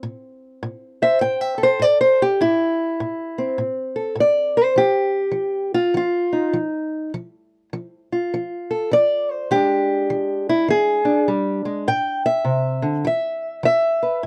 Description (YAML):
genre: acoustic country blues, solo or duo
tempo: 102 BPM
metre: 4/4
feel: swing 63% on 8ths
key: A minor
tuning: A4 = 440 Hz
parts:
  - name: fingerpicked old ladder-braced acoustic guitar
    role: solo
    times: 0.0-14.3 s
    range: A2 to G5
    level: -20 LUFS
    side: equal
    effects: none
room: light reverb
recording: dry, close 1970s-style studio recording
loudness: -20 LUFS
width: mono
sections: 0.0-14.2 A section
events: steel-string acoustic guitar solo 0.0-14.2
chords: 0.0 Am; 4.8 F7(no3); 9.5 E7#9; 11.9 Am; 13.1 E5